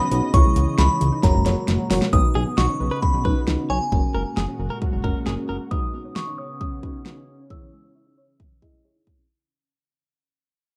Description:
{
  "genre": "synth-pop",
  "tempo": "134 BPM",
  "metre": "4/4",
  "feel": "straight",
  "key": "B major",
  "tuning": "A4 = 438 Hz",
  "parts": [
    { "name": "glassy synth bell", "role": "melody", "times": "0.0-9.0 s", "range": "G#5 to E6", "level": "-28 LUFS", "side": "equal", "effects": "chorus, low-pass filter, plate reverb, tape echo" },
    { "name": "lush unison pad", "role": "sustained chords", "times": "0.0-9.3 s", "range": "A#2 to D#5", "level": "-34 LUFS", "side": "equal", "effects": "chorus, low-pass filter" },
    { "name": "soft round pluck", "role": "arpeggios", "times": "0.0-9.2 s", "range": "D#3 to C#5", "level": "-34 LUFS", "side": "equal", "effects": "chorus, low-pass filter" },
    { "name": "FM electric piano with soft pad layer", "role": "accompaniment", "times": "0.1-9.2 s", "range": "C#4 to D#5", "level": "-32 LUFS", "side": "equal", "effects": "chorus, tremolo, low-pass filter" },
    { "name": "chorused synth bass", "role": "bass", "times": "0.1-5.6 s", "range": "F#1 to C#2", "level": "-25 LUFS", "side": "equal", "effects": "none" },
    { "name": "pop drum kit", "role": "drums", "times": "0.1-9.2 s", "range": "hi-hat, kick drum, snare drum", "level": "-24 LUFS", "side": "equal", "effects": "none" },
    { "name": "direct-recorded clean electric guitar", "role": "second line", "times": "2.4-5.6 s", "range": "F#4 to C#5", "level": "-33 LUFS", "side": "equal", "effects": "tape echo" }
  ],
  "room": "moderate small room reverb, RT60 0.6 s",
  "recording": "dark, warm production",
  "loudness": "-21 LUFS",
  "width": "mono",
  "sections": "0.0-2.1 A section; 2.1-9.3 B section",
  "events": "drum fill 1.2-2.1; fade-out 2.1-9.3; filter sweep 2.1-9.3",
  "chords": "0.3 C#madd9; 1.2 F#add9; 2.1 Badd9; 3.9 F#add9; 5.7 Badd9; 7.5 C#madd9"
}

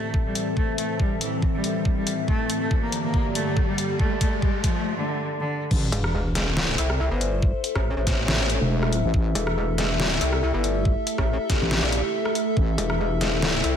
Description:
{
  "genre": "heavy wobble dubstep",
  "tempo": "140 BPM",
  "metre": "4/4",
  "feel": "swing 54% on 16ths, half-time",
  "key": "A phrygian",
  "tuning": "A4 = 440 Hz",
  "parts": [
    { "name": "clear cello", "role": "melody", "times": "0.0-5.6 s", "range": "D3 to Bb3", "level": "-28 LUFS", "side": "right 1 dB", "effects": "tape echo" },
    { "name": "evolving wavetable pad", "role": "sustained chords", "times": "0.0-13.8 s", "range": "G2 to C5", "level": "-30 LUFS", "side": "left 1 dB", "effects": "phaser, built-in reverb, sidechain pumping" },
    { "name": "riser and sub drop", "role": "sound effects", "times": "1.0-7.4 s", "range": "none", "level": "-33 LUFS", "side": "left 1 dB", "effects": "none" },
    { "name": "warbly tape-like pad", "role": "texture", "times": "0.0-13.8 s", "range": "G4 to A5", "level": "-31 LUFS", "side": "left 3 dB", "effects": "chorus, built-in reverb, phaser, sidechain pumping" },
    { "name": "electronic kick drum", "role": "drums", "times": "0.1-12.7 s", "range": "none", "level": "-23 LUFS", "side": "equal", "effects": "none" },
    { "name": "dubstep drum kit", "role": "drums", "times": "0.4-13.7 s", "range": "crash cymbal, hi-hat, rim click, snare drum", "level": "-27 LUFS", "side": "equal", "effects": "none" },
    { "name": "wobble bass", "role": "bass", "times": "5.7-5.9, 8.6-12.8 s", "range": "E1 to A1", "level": "-23 LUFS", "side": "equal", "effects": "chorus, overdrive" },
    { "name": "metallic wobble bass", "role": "bass", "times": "5.9-13.8 s", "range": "E1 to C2", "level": "-25 LUFS", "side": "equal", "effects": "chorus, overdrive" }
  ],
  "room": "moderate lush hall reverb, RT60 1.9 s",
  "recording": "dreamy mix soaked in reverb",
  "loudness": "-21 LUFS",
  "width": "side -8 dB against mid",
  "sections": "0.0-5.7 A section; 5.7-13.8 B section",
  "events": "build-up 0.0-5.7; riser 1.0-4.9; drum fill 2.3-4.9; break 4.9-5.7; drop 5.7-13.8; impact 5.7-7.4",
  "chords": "0.0 Am; 2.3 Gm; 5.7 Am"
}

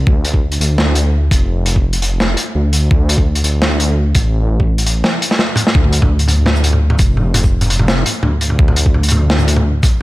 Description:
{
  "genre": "half-time drum and bass",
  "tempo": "169 BPM",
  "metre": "4/4",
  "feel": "half-time",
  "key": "D minor",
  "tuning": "A4 = 440 Hz",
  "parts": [
    { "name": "dark detuned saw bass", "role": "bass", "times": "0.0-9.8 s", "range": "F1 to D2", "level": "-14 LUFS", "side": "equal", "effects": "none" },
    { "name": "electronic kick drum", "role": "drums", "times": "0.1-9.9 s", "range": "none", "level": "-13 LUFS", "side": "equal", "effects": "overdrive" },
    { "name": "crunchy breakbeat drum kit", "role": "drums", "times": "0.2-9.9 s", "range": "hi-hat, shaker, snare drum, toms", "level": "-16 LUFS", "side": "equal", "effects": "none" }
  ],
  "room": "little or no reverb",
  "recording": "none",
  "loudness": "-11 LUFS",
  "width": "side -18 dB against mid",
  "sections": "0.0-10.0 A section",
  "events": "drum fill 5.0-5.8",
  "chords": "none"
}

